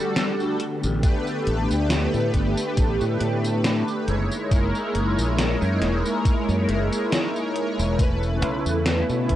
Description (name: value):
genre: vaporwave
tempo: 69 BPM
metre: 4/4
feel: swing 55% on 16ths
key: unclear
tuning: A4 = 444 Hz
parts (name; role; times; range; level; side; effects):
- mellow synth brass; accompaniment; 0.0-9.4 s; G3 to C#5; -25 LUFS; equal; phaser, analog chorus, tape echo
- soft string machine; sustained chords; 0.0-9.4 s; C#3 to G4; -28 LUFS; equal; ensemble chorus
- gated 80s digital drum machine; drums; 0.2-9.4 s; hi-hat, snare drum, tambourine; -27 LUFS; equal; gated reverb, gated reverb snare, small room ambience
- modern bright fingered electric bass; bass; 0.8-9.4 s; E1 to B2; -24 LUFS; equal; tube saturation
- electronic kick drum; drums; 1.0-9.4 s; none; -21 LUFS; equal; small room ambience
room: digital ambience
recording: dry, gritty hardware recording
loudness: -20 LUFS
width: side -13 dB against mid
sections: 0.0-9.4 A section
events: none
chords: 0.0 Em11 (rootless); 0.6 A9sus4; 4.1 F#13; 8.0 B9sus4